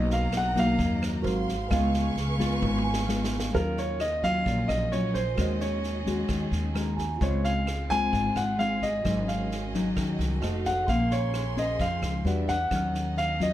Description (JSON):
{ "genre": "bossa nova", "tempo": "131 BPM", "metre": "4/4", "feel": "straight", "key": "unclear", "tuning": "A4 = 440 Hz", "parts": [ { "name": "clear concert grand piano", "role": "melody", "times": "0.0-13.5 s", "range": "Bb4 to Ab5", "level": "-29 LUFS", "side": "equal", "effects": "none" }, { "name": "nylon-string guitar", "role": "accompaniment", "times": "0.0-13.5 s", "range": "F#2 to C5", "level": "-29 LUFS", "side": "left 2 dB", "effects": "none" }, { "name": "tine electric piano", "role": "accompaniment", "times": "0.0-13.5 s", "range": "F4 to F6", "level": "-38 LUFS", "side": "right 5 dB", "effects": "phaser" }, { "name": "warm studio violin section", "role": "sustained chords", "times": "0.0-13.5 s", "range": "A3 to C#6", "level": "-38 LUFS", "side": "right 2 dB", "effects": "none" }, { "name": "upright bass", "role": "bass", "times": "0.0-13.5 s", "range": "F1 to F2", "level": "-31 LUFS", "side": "equal", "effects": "none" }, { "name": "swinging big-band drum kit", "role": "drums", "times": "0.1-13.5 s", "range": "kick drum, rim click, snare drum, toms", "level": "-36 LUFS", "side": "right 1 dB", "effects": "none" } ], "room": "moderate studio reverb, RT60 0.8 s", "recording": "none", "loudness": "-24 LUFS", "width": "side -13 dB against mid", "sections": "0.0-3.5 A section; 3.5-13.5 B section", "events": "grand piano solo 0.0-3.5; drum fill 2.6-3.5; tine electric piano fill 2.6-3.5, 6.5-7.2", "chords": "0.0 Bmaj7; 1.2 G#13; 1.7 C#7; 3.5 Ebm9; 5.4 Ab7sus4/Eb; 7.2 Dbmaj7; 9.0 Ab7sus4; 10.4 F7b9; 10.9 Bbm9; 12.3 Em9; 12.7 Ebm9", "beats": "0.33 0.79 1.24 | 1.70 2.16 2.62 3.08 | 3.53 3.99 4.45 4.91 | 5.37 5.83 6.29 6.75 | 7.21 7.66 8.12 8.58 | 9.04 9.50 9.96 10.42 | 10.88 11.34 11.79 12.25 | 12.71 13.17" }